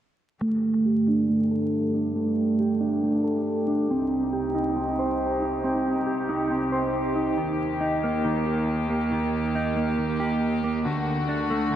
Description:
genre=hip hop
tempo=138 BPM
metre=4/4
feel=half-time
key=G minor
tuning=A4 = 442 Hz
part: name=bright chamber string section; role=sustained chords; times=0.4-11.8 s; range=C2 to G4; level=-29 LUFS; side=left 2 dB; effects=low-pass filter
part: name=mellow electric guitar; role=arpeggios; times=0.4-11.8 s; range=D3 to C5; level=-24 LUFS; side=right 2 dB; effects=lush chorus, low-pass filter, analog delay
room=wet lush hall reverb, RT60 2.8 s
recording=dreamy mix soaked in reverb, vinyl crackle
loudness=-22 LUFS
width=side -11 dB against mid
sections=0.4-11.8 A section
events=filter sweep 0.4-11.8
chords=0.4 Gsus2; 3.9 Cm; 7.4 Eb; 10.9 D

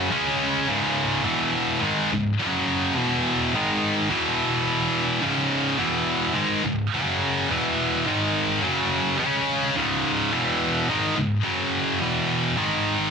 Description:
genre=rock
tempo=106 BPM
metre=4/4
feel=straight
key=C# minor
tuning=A4 = 437 Hz
part: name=heavy high-gain guitar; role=solo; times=0.0-13.1 s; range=C#2 to C#4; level=-21 LUFS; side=equal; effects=distortion
room=moderate large studio reverb, RT60 1.4 s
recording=dense, heavily limited modern master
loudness=-21 LUFS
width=side -6 dB against mid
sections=0.0-5.2 A section; 5.2-13.1 B section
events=none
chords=0.1 C#5; 1.3 E5; 1.8 C#5; 2.4 F#5; 3.0 E5; 3.5 G#5; 4.1 E5; 5.2 C#5; 5.8 E5; 6.4 C#5; 6.9 F#5; 7.5 E5; 8.1 G#5; 8.6 F#5; 9.2 C#5; 10.3 E5; 10.9 C#5; 11.4 F#5; 12.0 E5; 12.6 G#5

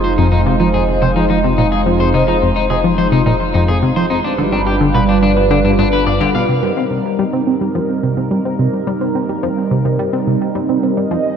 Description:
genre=ambient, sequencer-driven space music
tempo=107 BPM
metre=4/4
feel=straight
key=F dorian, C minor from 6.5 s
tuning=A4 = 440 Hz
part: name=phased analog pad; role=sustained chords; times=0.0-11.4 s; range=G3 to Eb5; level=-16 LUFS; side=right 2 dB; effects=phaser, chorus
part: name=electric guitar at the edge of break-up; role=arpeggios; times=0.0-6.4 s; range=D4 to F5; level=-20 LUFS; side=left 3 dB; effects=auto-pan, analog delay
part: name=warm sub bass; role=bass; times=0.0-6.5 s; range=F1 to G1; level=-21 LUFS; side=equal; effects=none
part: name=tight sequenced synth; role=riff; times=0.2-11.2 s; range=F2 to C4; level=-16 LUFS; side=equal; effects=chorus, analog delay
room=moderate lush hall reverb, RT60 2.5 s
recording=dreamy mix soaked in reverb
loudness=-13 LUFS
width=side -7 dB against mid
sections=0.0-6.5 A section; 6.5-11.4 B section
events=filter sweep on synth arpeggio sound 0.0-6.5, 6.5-11.4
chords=0.0 Fm7; 4.2 G7; 6.5 Cm7

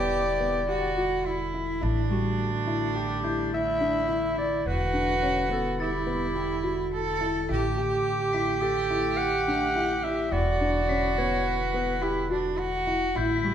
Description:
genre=contemporary instrumental, chamber music in an uneven meter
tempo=106 BPM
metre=5/4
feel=straight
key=E minor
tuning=A4 = 441 Hz
part: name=growling clarinet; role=melody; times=0.0-13.5 s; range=F#4 to F#5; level=-30 LUFS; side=left 1 dB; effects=none
part: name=rich cello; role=second line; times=0.0-13.5 s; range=D4 to A4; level=-28 LUFS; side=right 3 dB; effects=none
part: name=mellow woodwind section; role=sustained chords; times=0.0-13.5 s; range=D3 to G4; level=-37 LUFS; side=equal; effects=none
part: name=felt-muted upright piano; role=arpeggios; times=0.0-13.5 s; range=G3 to G4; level=-31 LUFS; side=left 3 dB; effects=none
part: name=upright bass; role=bass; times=0.0-13.5 s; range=E1 to A1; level=-32 LUFS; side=right 1 dB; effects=none
part: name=glockenspiel with rubber mallets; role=texture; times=3.2-13.5 s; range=G6 to B6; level=-39 LUFS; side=left 8 dB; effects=none
room=moderate recital hall reverb, RT60 1.4 s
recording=recorded in a church or concert hall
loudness=-24 LUFS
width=side -9 dB against mid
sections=0.0-13.5 A section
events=none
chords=0.0 Em7; 1.8 A7sus4; 4.7 Em7; 7.5 A7sus4; 10.3 Em7

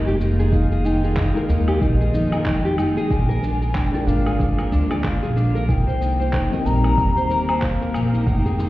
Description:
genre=organic downtempo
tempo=93 BPM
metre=4/4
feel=swing 58% on 16ths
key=F dorian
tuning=A4 = 440 Hz
part: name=bass bansuri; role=melody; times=0.0-8.7 s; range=Eb5 to Bb5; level=-28 LUFS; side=left 2 dB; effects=digital delay
part: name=bowed-like drone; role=sustained chords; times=0.0-8.7 s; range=D3 to G4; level=-27 LUFS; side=left 1 dB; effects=built-in reverb, sidechain pumping
part: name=nylon-string guitar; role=arpeggios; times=0.1-8.7 s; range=D4 to Bb5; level=-26 LUFS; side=equal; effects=tape echo
part: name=upright bass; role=bass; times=0.1-8.7 s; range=F1 to F2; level=-21 LUFS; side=equal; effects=sidechain pumping
part: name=electronic shaker, handclaps and woodblock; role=drums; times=0.1-8.7 s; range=none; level=-32 LUFS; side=left 1 dB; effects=none
part: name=electronic kick drum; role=drums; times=0.5-8.4 s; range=none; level=-22 LUFS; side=equal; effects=none
part: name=felt-muted upright piano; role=accompaniment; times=1.3-7.5 s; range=G3 to G5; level=-27 LUFS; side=left 2 dB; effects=sidechain pumping, tape echo
part: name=darbuka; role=percussion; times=8.3-8.7 s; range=none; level=-27 LUFS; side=equal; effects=none
room=light reverb, small room ambience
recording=heard muffled through a wall, stone room reverb, EQ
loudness=-17 LUFS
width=side -16 dB against mid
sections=0.0-8.7 A section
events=none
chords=0.0 Fm11; 3.1 Bb7; 5.7 Cm7

